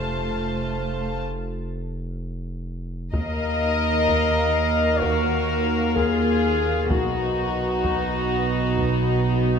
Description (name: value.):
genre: cinematic, suspense film score.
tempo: 64 BPM.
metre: 4/4.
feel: straight.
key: Eb minor.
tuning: A4 = 440 Hz.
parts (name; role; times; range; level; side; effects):
dark studio violin section; melody; 0.0-9.6 s; D#4 to A5; -29 LUFS; left 3 dB; none.
warm studio violin section; second line; 0.0-9.6 s; F#4 to Eb5; -28 LUFS; left 3 dB; none.
warm studio viola section; accompaniment; 0.0-9.6 s; Bb3 to F5; -28 LUFS; right 1 dB; none.
glass harmonica; sustained chords; 0.0-9.6 s; Eb4 to F5; -32 LUFS; right 1 dB; none.
dark studio cello section; bass; 0.0-9.6 s; Eb2 to A3; -31 LUFS; right 4 dB; none.
warm studio double bass section; bass; 0.0-9.6 s; F1 to Eb2; -31 LUFS; right 4 dB; none.
saturated sub bass; drone; 0.0-9.6 s; F1 to Eb2; -29 LUFS; left 1 dB; none.
warm clarinet; second line; 3.1-9.6 s; F#4 to Eb5; -27 LUFS; left 1 dB; none.
solo taiko drums; drums; 3.1-9.6 s; none; -31 LUFS; equal; none.
room: wet scoring stage reverb, RT60 1.7 s.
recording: none.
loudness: -20 LUFS.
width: side -6 dB against mid.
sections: 0.0-3.1 A section; 3.1-9.6 B section.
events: break 1.2-3.1.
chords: 0.0 F; 3.1 Ebmadd9; 6.9 B.